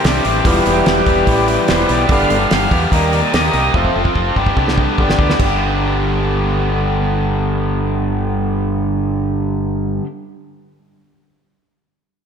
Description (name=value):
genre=classic rock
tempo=146 BPM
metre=4/4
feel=straight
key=G mixolydian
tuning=A4 = 442 Hz
part: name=overdriven tonewheel organ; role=sustained chords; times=0.0-5.4 s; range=D3 to F5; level=-17 LUFS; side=equal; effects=slow rotary speaker
part: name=cranked stack guitar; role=riff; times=0.0-10.1 s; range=E2 to A4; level=-17 LUFS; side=equal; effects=overdrive, slapback echo
part: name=growling fingered electric bass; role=bass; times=0.0-10.0 s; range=E1 to E2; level=-20 LUFS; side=equal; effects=overdrive
part: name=damped 70s drum kit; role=drums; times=0.0-5.5 s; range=crash cymbal, hi-hat, kick drum, snare drum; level=-18 LUFS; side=right 1 dB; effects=none
room=wet lush hall reverb, RT60 2.0 s, small room ambience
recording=big arena sound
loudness=-13 LUFS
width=side -7 dB against mid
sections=0.0-5.4 A section; 5.4-8.7 B section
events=tonewheel organ solo 0.0-5.4; drum fill 3.7-5.4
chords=0.5 Em; 2.1 G; 2.9 Eb; 3.7 F; 4.4 G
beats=0.04 | 0.46 0.87 1.28 1.69 | 2.10 2.51 2.92 3.33 | 3.75 4.16 4.57 4.98 | 5.39 5.80 6.22 6.63 | 7.04 7.45 7.86 8.28